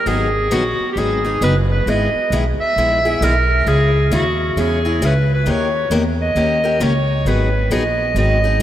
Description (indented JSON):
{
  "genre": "acoustic string swing (jazz manouche)",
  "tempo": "134 BPM",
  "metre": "4/4",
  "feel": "swing 63% on 8ths",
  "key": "G# minor",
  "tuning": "A4 = 440 Hz",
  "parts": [
    { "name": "bright clarinet", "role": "melody", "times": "0.0-8.6 s", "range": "F#4 to E5", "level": "-18 LUFS", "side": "right 1 dB", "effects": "none" },
    { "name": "picked steel-string acoustic guitar", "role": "accompaniment", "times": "0.1-8.6 s", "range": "C#3 to A#4", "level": "-21 LUFS", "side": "left 2 dB", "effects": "none" },
    { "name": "upright bass", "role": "bass", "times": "0.1-8.6 s", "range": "F#1 to E2", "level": "-18 LUFS", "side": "equal", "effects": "none" }
  ],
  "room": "wet cathedral reverb, RT60 6.1 s",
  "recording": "in a vast, echoing space, faint mains hum",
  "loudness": "-14 LUFS",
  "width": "side -12 dB against mid",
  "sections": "0.1-8.6 A section",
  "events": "none",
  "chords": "0.1 G#m7; 1.9 Emaj7/G#; 3.7 C#m; 5.5 D#7; 7.3 G#m7",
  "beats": "| 0.06 0.51 0.96 1.41 | 1.86 2.31 2.76 3.21 | 3.66 4.11 4.56 5.01 | 5.46 5.91 6.36 6.80 | 7.25 7.70 8.15 8.60"
}